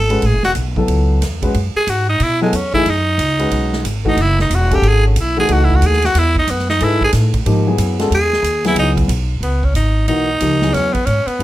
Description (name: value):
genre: modal jazz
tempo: 183 BPM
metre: 4/4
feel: swing 63% on 8ths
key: unclear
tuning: A4 = 440 Hz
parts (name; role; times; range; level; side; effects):
- growling tenor saxophone; melody; 0.0-11.4 s; G#3 to A4; -17 LUFS; equal; none
- upright bass; bass; 0.0-11.4 s; E1 to B2; -16 LUFS; equal; none
- dark concert grand piano; accompaniment; 0.1-11.4 s; E3 to B4; -19 LUFS; left 2 dB; none
- swinging big-band drum kit; drums; 0.1-11.4 s; hi-hat, kick drum, ride cymbal, snare drum; -24 LUFS; right 2 dB; none
room: light reverb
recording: none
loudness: -13 LUFS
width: side -15 dB against mid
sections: 0.0-9.4 A section; 9.4-11.4 B section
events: tenor saxophone solo 0.0-9.4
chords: 0.0 F#m11; 4.2 C#madd9; 9.4 C#m11